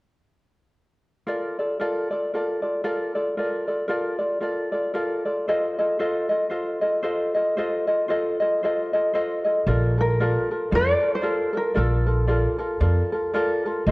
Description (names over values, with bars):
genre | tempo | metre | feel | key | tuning
Hawaiian | 114 BPM | 4/4 | swing 58% on 8ths | Bb major | A4 = 440 Hz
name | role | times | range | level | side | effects
ukulele | accompaniment | 1.3-13.9 s | F4 to Eb5 | -23 LUFS | equal | none
upright bass | bass | 9.7-13.9 s | F1 to F2 | -21 LUFS | equal | transformer saturation
tenor ukulele | melody | 10.0-12.3 s | A4 to D5 | -24 LUFS | equal | none
room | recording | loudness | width
wet recital hall reverb, RT60 1.5 s | worn, warbling old tape, cassette tape, warbly pitch drift | -21 LUFS | side -24 dB against mid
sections
1.3-9.7 A section; 9.7-13.9 B section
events
none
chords
1.3 Bbmaj7; 5.5 F7; 9.7 Bbmaj7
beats
| 1.29 1.81 2.34 2.86 | 3.39 3.91 4.44 4.96 | 5.49 6.01 6.54 7.06 | 7.58 8.11 8.63 9.16 | 9.68 10.20 10.73 11.25 | 11.78 12.30 12.82 13.35 | 13.87